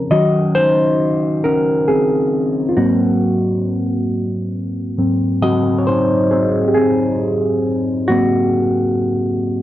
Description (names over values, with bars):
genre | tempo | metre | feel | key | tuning
R&B | 45 BPM (dotted quarters) | 6/8 | straight | unclear | A4 = 442 Hz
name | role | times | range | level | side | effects
overdriven reed electric piano | solo | 0.0-9.6 s | Ab2 to Eb5 | -14 LUFS | equal | phaser
room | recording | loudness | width
light reverb | dry, close 1970s-style studio recording | -14 LUFS | side -13 dB against mid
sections
0.0-9.6 A section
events
reed electric piano solo 0.0-9.6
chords
0.1 Ebm7; 2.7 Ab9